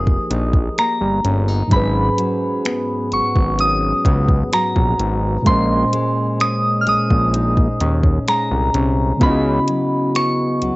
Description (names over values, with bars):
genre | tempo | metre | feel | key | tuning
contemporary R&B | 64 BPM | 4/4 | straight | unclear | A4 = 441 Hz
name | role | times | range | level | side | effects
soft synth bell | melody | 0.0-10.8 s | Bb5 to F6 | -20 LUFS | equal | chorus, cassette tape
muted felt-like synth keys | accompaniment | 0.0-10.8 s | Ab2 to Eb5 | -22 LUFS | right 1 dB | chorus, cassette tape
nylon-string guitar | arpeggios | 0.0-10.8 s | Ab2 to Ab4 | -24 LUFS | left 2 dB | cassette tape
fat analog bass | bass | 0.0-10.7 s | F1 to Eb2 | -19 LUFS | equal | none
smooth R&B drum kit | drums | 0.1-10.8 s | finger snaps, hi-hat, kick drum | -18 LUFS | equal | cassette tape
room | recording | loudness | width
light reverb | home recording on cassette, nothing above 7.9 kHz | -15 LUFS | side -21 dB against mid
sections
0.0-10.8 A section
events
none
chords
0.0 Fm11; 1.7 Abm11; 5.5 Bbm11; 9.2 Dbm11